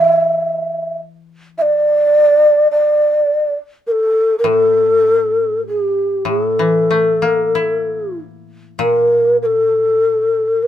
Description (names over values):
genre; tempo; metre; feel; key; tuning
japanese traditional, Japanese chamber music; 46-52 BPM; 4/4; rubato; A in sen; A4 = 444 Hz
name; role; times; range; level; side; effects
breathy mellow long shakuhachi; melody; 0.0-10.7 s; G4 to E5; -12 LUFS; equal; none
koto; accompaniment; 0.0-10.7 s; A2 to E4; -24 LUFS; left 4 dB; none
room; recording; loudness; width
light reverb; minimal, uncompressed stereo recording; -12 LUFS; side -10 dB against mid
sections
0.0-8.8 A section; 8.8-10.7 B section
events
none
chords
none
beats
0.40 1.55 2.71 | 3.87 5.06 6.27 7.54 | 8.80 10.01